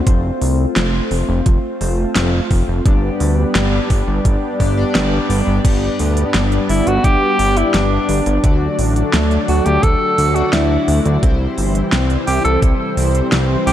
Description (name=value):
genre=synthwave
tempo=86 BPM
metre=4/4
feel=straight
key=G major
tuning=A4 = 441 Hz
part: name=lush unison pad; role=sustained chords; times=0.0-13.7 s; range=E3 to F4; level=-21 LUFS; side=left 1 dB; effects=chorus, sidechain pumping
part: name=chorused polysynth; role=stabs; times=0.0-13.7 s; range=G2 to D5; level=-23 LUFS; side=left 2 dB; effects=digital delay
part: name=fat analog bass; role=bass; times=0.1-13.7 s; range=F1 to D2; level=-17 LUFS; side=equal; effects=none
part: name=electronic kick drum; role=drums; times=0.1-12.8 s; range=none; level=-15 LUFS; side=equal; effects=none
part: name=pop drum kit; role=drums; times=0.1-13.7 s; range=crash cymbal, hi-hat, snare drum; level=-22 LUFS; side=equal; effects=none
part: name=breathy tenor saxophone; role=melody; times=6.7-13.7 s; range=D4 to A4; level=-19 LUFS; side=equal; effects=digital delay
part: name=airy dreamy lead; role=second line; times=6.7-13.7 s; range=D4 to A4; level=-25 LUFS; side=equal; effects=none
room=light reverb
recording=dark, warm production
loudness=-13 LUFS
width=side -11 dB against mid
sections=0.0-5.6 A section; 5.6-13.7 B section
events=filter sweep on analog synth pad 0.0-5.6; filter sweep on analog polysynth 0.0-5.6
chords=0.1 F; 2.9 G; 8.4 D; 11.2 C